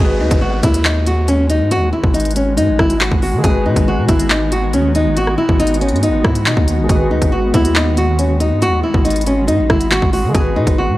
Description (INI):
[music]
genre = hip hop, drill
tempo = 139 BPM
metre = 4/4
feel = half-time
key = G# minor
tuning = A4 = 440 Hz
[part]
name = nylon-string guitar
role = melody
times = 0.0-11.0 s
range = C#4 to G#4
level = -17 LUFS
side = equal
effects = none
[part]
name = dark grand piano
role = accompaniment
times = 0.0-11.0 s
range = G#3 to B4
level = -25 LUFS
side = equal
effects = none
[part]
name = granular cloud pad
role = sustained chords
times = 1.3-11.0 s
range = D#3 to F#4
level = -22 LUFS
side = right 1 dB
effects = built-in reverb
[part]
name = long sustained 808-style bass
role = bass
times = 0.0-11.0 s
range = G#1 to D#3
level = -18 LUFS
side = equal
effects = none
[part]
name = downlifter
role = sound effects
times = 0.0-3.4 s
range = none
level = -30 LUFS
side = equal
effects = none
[part]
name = drill drum kit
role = drums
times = 0.3-10.8 s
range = handclaps, hi-hat, kick drum, rim click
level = -16 LUFS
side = equal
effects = none
[sound]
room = little or no reverb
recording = dry, gritty hardware recording, transformer saturation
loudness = -12 LUFS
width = side -16 dB against mid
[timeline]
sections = 0.0-11.0 A section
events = none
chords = 0.0 G#m7